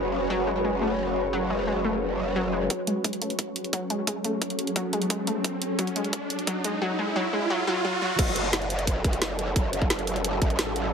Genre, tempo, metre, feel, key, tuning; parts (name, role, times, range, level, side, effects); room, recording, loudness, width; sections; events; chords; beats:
dark technical drum and bass; 175 BPM; 4/4; straight; F# minor; A4 = 440 Hz
swarming drone; sustained chords; 0.0-10.9 s; F#3 to B4; -32 LUFS; equal; built-in reverb, sidechain pumping
growl bass; bass; 0.0-2.7, 8.2-10.9 s; F#1 to A1; -29 LUFS; equal; chorus, tube saturation
granular cloud pad; texture; 0.0-10.9 s; F#4 to C#5; -34 LUFS; left 1 dB; built-in reverb, sidechain pumping
wide unison pluck; arpeggios; 0.3-8.1 s; F#3 to A3; -30 LUFS; left 1 dB; cassette tape, sidechain pumping, digital delay
drum and bass drum kit; drums; 2.7-10.8 s; crash cymbal, hi-hat, snare drum; -28 LUFS; right 1 dB
electronic kick drum; drums; 2.7-10.5 s; -27 LUFS; equal; high-pass filter on kick, high-pass filter on room
riser; sound effects; 4.1-8.2 s; -31 LUFS; right 2 dB
light reverb, digital ambience; high-pass filter; -24 LUFS; side -6 dB against mid
0.0-2.7 A section; 2.7-8.2 B section; 8.2-10.9 C section
build-up 2.7-8.2; filter sweep on synth arpeggio sound 2.7-8.2; riser 4.1-8.2; drum fill 5.4-6.8; drop 8.2-10.9
0.0 F#5; 2.7 F#m
0.30 0.65 0.99 | 1.33 1.67 2.02 2.36 | 2.70 3.04 3.39 3.73 | 4.07 4.42 4.76 5.10 | 5.45 5.79 6.13 6.47 | 6.82 7.16 7.50 7.84 | 8.19 8.53 8.87 9.22 | 9.56 9.90 10.24 10.59 | 10.93